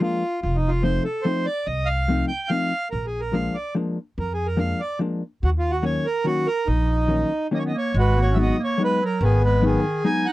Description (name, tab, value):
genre	musette waltz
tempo	144 BPM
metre	3/4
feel	straight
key	Eb minor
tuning	A4 = 440 Hz
part	accordion	melody	0.0-10.3 s	B3 to G#5	-24 LUFS	right 1 dB	none
part	hollow-body jazz guitar	accompaniment	0.0-10.3 s	Eb3 to Eb4	-23 LUFS	left 2 dB	none
part	upright bass	bass	0.4-9.7 s	F1 to F2	-22 LUFS	equal	none
part	bright clarinet	second line	7.5-10.3 s	D#3 to D#4	-27 LUFS	right 3 dB	none
room	little or no reverb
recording	dry, close 1970s-style studio recording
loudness	-20 LUFS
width	side -17 dB against mid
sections	0.0-7.9 A section; 7.9-10.3 B section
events	none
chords	0.4 F7; 2.9 Bb7; 5.4 Ebm7; 7.9 G#m7